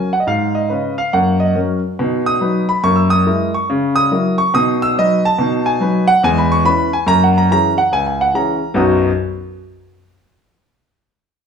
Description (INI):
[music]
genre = jazz, stride piano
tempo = 141 BPM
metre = 4/4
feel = swing 64% on 8ths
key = B major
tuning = A4 = 441 Hz
[part]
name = clear concert grand piano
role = solo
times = 0.0-9.1 s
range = B1 to E6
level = -13 LUFS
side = equal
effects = none
[sound]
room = wet large studio reverb, RT60 1.2 s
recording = band playing live in one room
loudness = -13 LUFS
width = side -6 dB against mid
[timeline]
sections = 0.0-8.8 A section; 8.8-10.5 B section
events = none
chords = 0.3 C#5/G#; 1.1 F#; 2.0 B; 2.8 F#9; 3.7 F#7/C#; 4.5 B; 6.2 E6; 7.1 F#9; 8.8 B